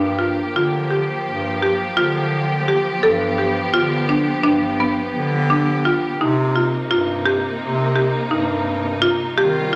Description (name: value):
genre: contemporary instrumental, chamber music in an uneven meter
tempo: 170 BPM (eighths)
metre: 9/8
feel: straight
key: G minor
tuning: A4 = 440 Hz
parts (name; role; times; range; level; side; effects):
- rich studio string section; sustained chords; 0.0-9.8 s; C3 to G4; -26 LUFS; equal; none
- buzzing marimba with hard mallets; arpeggios; 0.0-9.8 s; B3 to A4; -22 LUFS; equal; none
- mellow bass clarinet; bass; 0.0-9.8 s; G2 to Eb3; -26 LUFS; equal; none
room: moderate scoring stage reverb, RT60 1.5 s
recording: none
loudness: -19 LUFS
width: mono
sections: 0.0-9.8 A section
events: none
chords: 0.0 Gm7; 3.0 G7; 6.2 Cm7